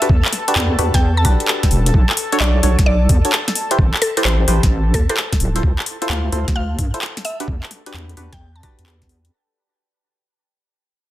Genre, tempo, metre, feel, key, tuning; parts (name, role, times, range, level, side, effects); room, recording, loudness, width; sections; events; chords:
UK garage, two-step garage; 130 BPM; 4/4; swing 67% on 16ths; A4 = 442 Hz
mallet-like synth pluck; melody; 0.0-8.7 s; A4 to A5; -24 LUFS; equal; chorus, dub echo
warm analog pad; sustained chords; 0.0-9.3 s; A4 to A5; -29 LUFS; left 2 dB; chorus, sidechain pumping
percussive organ stab; stabs; 0.0-9.3 s; D4 to C#5; -23 LUFS; equal; chorus, phaser, dub echo
garage drum kit; drums; 0.0-9.3 s; handclaps, hi-hat, snare drum; -20 LUFS; left 1 dB; small room ambience, soft clipping on snare
deep soft wobble bass; bass; 0.1-9.3 s; D1 to G2; -17 LUFS; equal; chorus
electronic kick drum; drums; 0.1-9.1 s; -16 LUFS; equal; overdrive, small room ambience
little or no reverb; dense, heavily limited modern master; -14 LUFS; side -14 dB against mid
0.0-9.3 A section
drop 0.0-9.3; fade-out 4.4-9.3
0.0 Em9; 1.9 Bm9; 3.6 Am9; 5.4 Dm9; 7.2 Em9